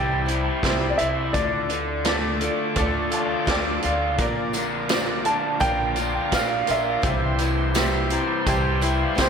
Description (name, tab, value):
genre	folk rock and heartland rock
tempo	84 BPM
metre	4/4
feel	straight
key	unclear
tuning	A4 = 440 Hz
part	dark baby grand piano	melody	0.0-9.3 s	C5 to A5	-26 LUFS	right 2 dB	slapback echo, analog delay
part	bright upright piano	accompaniment	0.0-9.3 s	E4 to Bb5	-30 LUFS	right 3 dB	slapback echo
part	picked steel-string acoustic guitar	accompaniment	0.0-9.3 s	Bb2 to C5	-30 LUFS	left 4 dB	slapback echo
part	bright tonewheel organ	sustained chords	0.0-9.3 s	E3 to D5	-32 LUFS	equal	slow rotary speaker, overdrive
part	crunchy overdriven guitar	riff	0.0-9.3 s	Bb2 to F4	-27 LUFS	equal	slapback echo
part	upright bass	bass	0.0-9.3 s	Bb1 to D2	-28 LUFS	equal	none
part	vintage drum kit	drums	0.3-9.3 s	hi-hat, kick drum, snare drum	-26 LUFS	right 1 dB	none
part	tambourine	percussion	4.5-9.3 s	none	-41 LUFS	left 6 dB	none
room	wet concert hall reverb, RT60 2.0 s, small room ambience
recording	big arena sound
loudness	-20 LUFS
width	side -6 dB against mid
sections	0.0-9.3 A section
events	upright piano fill 2.8-4.2, 7.8-9.3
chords	0.0 C; 1.3 Dm; 4.2 Bb; 7.0 C